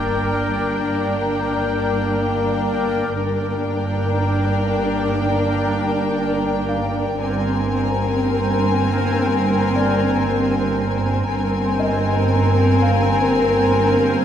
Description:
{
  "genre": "cinematic, suspense film score",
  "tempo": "58 BPM",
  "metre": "4/4",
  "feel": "straight",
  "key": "G phrygian",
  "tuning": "A4 = 440 Hz",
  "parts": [
    { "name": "clear studio violin section", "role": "melody", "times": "0.0-14.2 s", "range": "G5 to Ab5", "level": "-28 LUFS", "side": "left 6 dB", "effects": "none" },
    { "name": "rich studio violin section", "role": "second line", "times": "0.0-14.2 s", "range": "Bb4", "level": "-25 LUFS", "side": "left 4 dB", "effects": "none" },
    { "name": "clear studio viola section", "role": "accompaniment", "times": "0.0-14.2 s", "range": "C4 to D4", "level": "-26 LUFS", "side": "right 1 dB", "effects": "none" },
    { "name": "bubbling stepped-filter texture", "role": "sustained chords", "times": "0.0-14.2 s", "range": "Bb4 to Ab5", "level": "-26 LUFS", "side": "equal", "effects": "chorus, built-in reverb" },
    { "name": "mellow French horn section", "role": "sustained chords", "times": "0.0-14.2 s", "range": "Bb3 to D4", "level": "-25 LUFS", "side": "left 1 dB", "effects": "none" },
    { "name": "clear studio double bass section", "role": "bass", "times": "0.0-14.2 s", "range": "G1", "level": "-24 LUFS", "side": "right 3 dB", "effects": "none" },
    { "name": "warm studio cello section", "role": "bass", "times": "0.0-14.2 s", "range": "G2", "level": "-25 LUFS", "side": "right 2 dB", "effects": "none" },
    { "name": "sub drop", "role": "sound effects", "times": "0.0-3.1 s", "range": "none", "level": "-41 LUFS", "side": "equal", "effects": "none" },
    { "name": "dark baby grand piano", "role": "texture", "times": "0.0-14.2 s", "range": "D5 to F5", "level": "-32 LUFS", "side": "left 3 dB", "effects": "none" }
  ],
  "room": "moderate scoring stage reverb, RT60 1.7 s",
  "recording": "none",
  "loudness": "-17 LUFS",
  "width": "side -9 dB against mid",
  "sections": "0.0-14.2 A section",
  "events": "impact 0.0-3.1",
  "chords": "0.0 Gm; 7.2 Abadd9/G",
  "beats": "1.02 2.05 | 3.07 4.10 5.13 6.17 | 7.20 8.23 9.25 10.27 | 11.29 12.31 13.32"
}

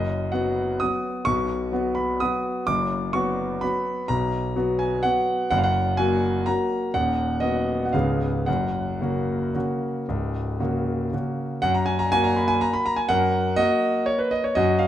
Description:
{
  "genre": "classical, piano waltz",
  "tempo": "108-136 BPM",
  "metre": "3/4",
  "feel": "rubato",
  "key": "F# major",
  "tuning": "A4 = 442 Hz",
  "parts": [
    { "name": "clear concert grand piano", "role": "solo", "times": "0.0-14.9 s", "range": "C#1 to D#6", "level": "-21 LUFS", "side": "equal", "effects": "none" }
  ],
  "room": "moderate recital hall reverb, RT60 1.4 s",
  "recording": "none",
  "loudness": "-21 LUFS",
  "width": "side -11 dB against mid",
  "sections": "0.0-11.6 A section; 11.6-14.9 A section",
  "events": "none",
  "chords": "0.0 B/F#; 5.5 F#; 6.9 B/D#; 7.9 C#7; 8.5 F#",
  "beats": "0.32 0.81 | 1.27 1.72 2.21 | 2.67 3.14 3.62 | 4.09 4.55 5.04 | 5.51 5.98 6.47 | 6.94 7.42 7.94 | 8.47 9.01 9.55 | 10.09 10.61 11.13 | 11.63 12.11 12.61 | 13.09 13.56 14.06 | 14.55"
}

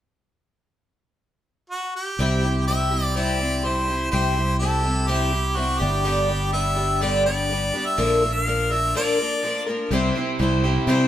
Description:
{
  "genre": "rock",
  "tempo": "124 BPM",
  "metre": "4/4",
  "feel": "straight",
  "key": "unclear",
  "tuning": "A4 = 438 Hz",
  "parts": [
    { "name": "bright harmonica", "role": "melody", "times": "1.7-9.6 s", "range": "F#4 to F5", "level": "-24 LUFS", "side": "equal", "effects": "none" },
    { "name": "picked twelve-string acoustic guitar", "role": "accompaniment", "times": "2.2-11.1 s", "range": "G2 to C5", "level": "-24 LUFS", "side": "left 2 dB", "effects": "none" },
    { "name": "fingered electric bass", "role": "bass", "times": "2.2-11.1 s", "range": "G1 to C3", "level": "-24 LUFS", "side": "equal", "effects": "none" },
    { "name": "overdriven semi-hollow guitar", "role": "riff", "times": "9.9-11.1 s", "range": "C3 to G4", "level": "-24 LUFS", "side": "right 3 dB", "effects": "none" }
  ],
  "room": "moderate stone room reverb, RT60 1.2 s",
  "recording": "band playing live in one room",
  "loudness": "-20 LUFS",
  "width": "side -11 dB against mid",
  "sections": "0.3-2.2 A section; 2.2-9.9 B section; 9.9-11.1 C section",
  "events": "break 8.9-9.9",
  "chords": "0.3 N.C.; 2.2 C; 5.8 G; 8.0 Bb; 9.9 C",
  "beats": "| 0.26 0.74 1.22 1.71 | 2.19 2.67 3.16 3.64 | 4.12 4.61 5.09 5.57 | 6.06 6.54 7.02 7.50 | 7.99 8.47 8.95 9.43 | 9.91 10.39 10.88"
}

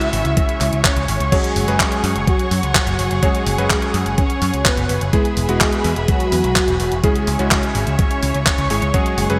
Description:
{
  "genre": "italo disco",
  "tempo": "126 BPM",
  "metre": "4/4",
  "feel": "straight",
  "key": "unclear",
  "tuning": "A4 = 440 Hz",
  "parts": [
    { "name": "mellow synth brass", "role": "melody", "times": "0.0-9.4 s", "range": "F#3 to E5", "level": "-24 LUFS", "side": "equal", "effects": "chorus, phaser, digital delay" },
    { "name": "rich studio string section", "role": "sustained chords", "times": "0.0-9.4 s", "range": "G#4 to C#6", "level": "-29 LUFS", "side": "equal", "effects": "none" },
    { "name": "clear electric grand piano", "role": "stabs", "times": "0.0-9.4 s", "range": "C#3 to C#5", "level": "-26 LUFS", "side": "equal", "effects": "none" },
    { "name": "clean 12-bit digital drum machine", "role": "drums", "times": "0.0-9.4 s", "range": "crash cymbal, handclaps, hi-hat", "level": "-24 LUFS", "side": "equal", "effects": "overdrive, gated reverb" },
    { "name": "picked electric bass", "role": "bass", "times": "0.1-9.4 s", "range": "E1 to F#2", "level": "-23 LUFS", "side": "equal", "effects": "none" },
    { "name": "electronic kick drum", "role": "drums", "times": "0.4-9.0 s", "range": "none", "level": "-22 LUFS", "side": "equal", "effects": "none" }
  ],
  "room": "moderate lush hall reverb, RT60 2.0 s",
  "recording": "bright 1980s-style digital production",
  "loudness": "-17 LUFS",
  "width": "mono",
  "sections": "0.0-9.4 A section",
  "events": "none",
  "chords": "0.0 C#m; 1.3 F#sus2; 5.1 E; 7.0 C#m",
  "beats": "0.37 0.85 | 1.32 1.80 2.27 2.75 | 3.23 3.70 4.18 4.66 | 5.13 5.61 6.08 6.56 | 7.04 7.51 7.99 8.46 | 8.94"
}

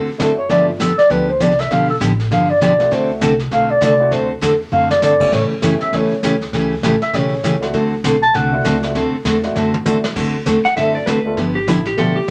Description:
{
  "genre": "country, western swing",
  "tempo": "199 BPM",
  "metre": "4/4",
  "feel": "swing 60% on 8ths",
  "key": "D mixolydian",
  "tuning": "A4 = 440 Hz",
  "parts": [
    { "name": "picked steel-string acoustic guitar", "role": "accompaniment", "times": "0.0-12.3 s", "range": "C#3 to A4", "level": "-20 LUFS", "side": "equal", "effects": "none" },
    { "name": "upright bass", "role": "bass", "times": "0.0-12.3 s", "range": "G1 to A2", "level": "-28 LUFS", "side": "equal", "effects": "none" },
    { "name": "warm upright piano", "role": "accompaniment", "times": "0.2-0.7, 2.8-12.1 s", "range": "A3 to A4", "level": "-27 LUFS", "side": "equal", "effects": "none" },
    { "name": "vintage brush drum kit", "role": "drums", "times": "0.2-12.3 s", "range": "brushed snare drum, crash cymbal, hi-hat, kick drum, snare drum, toms", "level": "-28 LUFS", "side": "equal", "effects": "none" },
    { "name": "dark clarinet", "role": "second line", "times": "0.4-8.8 s", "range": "F4 to A5", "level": "-17 LUFS", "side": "equal", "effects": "none" },
    { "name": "clean lap steel guitar", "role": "second line", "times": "10.6-12.3 s", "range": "E4 to F#5", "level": "-21 LUFS", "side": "equal", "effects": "none" }
  ],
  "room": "wet studio reverb, RT60 0.5 s",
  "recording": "none",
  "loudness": "-16 LUFS",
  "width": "mono",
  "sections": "0.0-10.2 A section; 10.2-12.3 A section",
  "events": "clarinet solo 0.0-10.2; drum fill 4.7-5.0, 9.6-10.2; electric slide guitar solo 10.2-12.3",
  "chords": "0.5 G9; 2.9 D9; 5.3 A9; 7.7 D9; 11.4 G9",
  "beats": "0.20 | 0.50 0.80 1.10 1.40 | 1.70 2.00 2.31 2.61 | 2.91 3.21 3.51 3.81 | 4.12 4.42 4.72 5.02 | 5.33 5.63 5.93 6.23 | 6.53 6.83 7.14 7.44 | 7.74 8.04 8.35 8.65 | 8.95 9.25 9.55 9.86 | 10.16 10.46 10.77 11.07 | 11.37 11.67 11.98 12.28"
}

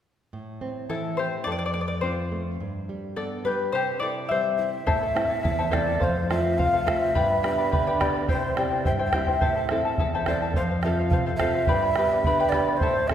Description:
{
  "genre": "andean folk, Andean ensemble",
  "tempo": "106 BPM",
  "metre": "2/4",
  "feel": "straight",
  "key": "A minor",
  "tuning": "A4 = 439 Hz",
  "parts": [
    { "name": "nylon-string guitar", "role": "accompaniment", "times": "0.3-13.1 s", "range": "E2 to A4", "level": "-29 LUFS", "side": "right 1 dB", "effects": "none" },
    { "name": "charango", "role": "accompaniment", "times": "0.9-13.1 s", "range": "E4 to B5", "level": "-26 LUFS", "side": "left 3 dB", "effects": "none" },
    { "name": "breathy large quena", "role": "melody", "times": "4.6-13.1 s", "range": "C5 to G5", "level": "-26 LUFS", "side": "right 1 dB", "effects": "none" },
    { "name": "bombo", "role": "percussion", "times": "4.9-13.1 s", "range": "none", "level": "-28 LUFS", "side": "right 1 dB", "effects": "none" }
  ],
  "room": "wet scoring stage reverb, RT60 2.0 s",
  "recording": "recorded in a church or concert hall",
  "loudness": "-22 LUFS",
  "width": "side -9 dB against mid",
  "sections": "0.3-4.9 A section; 4.9-13.1 B section",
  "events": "charango solo 0.3-4.9",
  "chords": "0.3 Am; 1.5 F; 2.6 G; 3.7 C; 4.9 Am; 6.0 F; 7.1 G; 8.3 C; 9.4 Am; 10.5 F; 11.7 G",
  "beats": "| 0.32 0.89 | 1.46 2.03 | 2.60 3.17 | 3.74 4.30 | 4.87 5.44 | 6.01 6.58 | 7.14 7.71 | 8.28 8.84 | 9.41 9.98 | 10.54 11.11 | 11.68 12.25 | 12.81"
}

